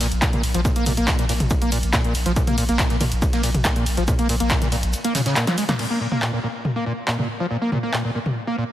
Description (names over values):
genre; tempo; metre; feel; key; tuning
driving peak-time techno; 140 BPM; 4/4; straight; Bb minor; A4 = 440 Hz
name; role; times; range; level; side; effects
screaming distorted acid line; riff; 0.0-8.6 s; Bb2 to Bb3; -23 LUFS; equal; distortion, analog chorus, sidechain pumping, ping-pong delay
saturated sub bass; bass; 0.0-4.9 s; Bb1; -24 LUFS; equal; overdrive, sidechain pumping, low-pass filter
punchy analog drum machine; drums; 0.0-8.3 s; crash cymbal, handclaps, hi-hat, ride cymbal, snare drum, toms; -24 LUFS; equal; sidechain pumping on hats, sidechain pumping on toms, sidechain pumping on cymbals
shaker and snare drum; drums; 0.0-5.7 s; none; -33 LUFS; right 1 dB; high-pass filter on snare, sidechain pumping on perc, high-pass filter on perc, high-pass filter on room
electronic kick drum; drums; 0.2-4.6 s; none; -22 LUFS; equal; none
room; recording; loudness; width
light reverb; heavily compressed radio sound, multiband compression; -19 LUFS; side -13 dB against mid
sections
0.0-5.8 A section; 5.8-8.7 B section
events
drop 0.0-5.8; drum fill 5.5-5.8; band accent 5.7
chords
0.0 Bb5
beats
0.22 | 0.65 1.08 1.51 1.94 | 2.36 2.79 3.22 3.65 | 4.08 4.51 4.93 5.36 | 5.79 6.22 6.65 7.08 | 7.51 7.93 8.36